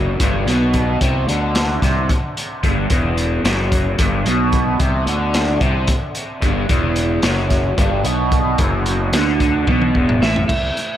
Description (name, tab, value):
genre	psychedelic rock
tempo	222 BPM (eighths)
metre	7/8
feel	straight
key	E minor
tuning	A4 = 440 Hz
part	raw garage guitar	riff	0.0-10.5 s	E2 to D3	-19 LUFS	right 1 dB	overdrive, phaser, dub echo
part	fuzz fingered electric bass	bass	0.0-10.7 s	E1 to D2	-21 LUFS	equal	overdrive
part	crunchy breakbeat drum kit	drums	0.2-10.9 s	crash cymbal, hi-hat, kick drum, snare drum, toms	-20 LUFS	equal	dub echo
part	electric slide guitar	melody	10.2-11.0 s	E5	-22 LUFS	right 3 dB	none
room	studio reverb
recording	echo-heavy mix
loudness	-15 LUFS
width	side -11 dB against mid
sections	0.0-10.5 A section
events	drum fill 9.7-10.5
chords	0.0 Em7